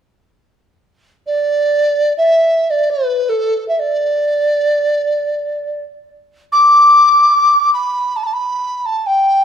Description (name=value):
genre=chinese traditional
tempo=free time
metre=none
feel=none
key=D zhi mode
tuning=A4 = 440 Hz
part: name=mellow hollow large dizi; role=melody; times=1.3-9.4 s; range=A4 to D6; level=-11 LUFS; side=equal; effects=none
room=moderate recital hall reverb, RT60 1.6 s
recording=none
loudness=-12 LUFS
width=side -8 dB against mid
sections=0.8-9.4 A section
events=none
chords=none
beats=free time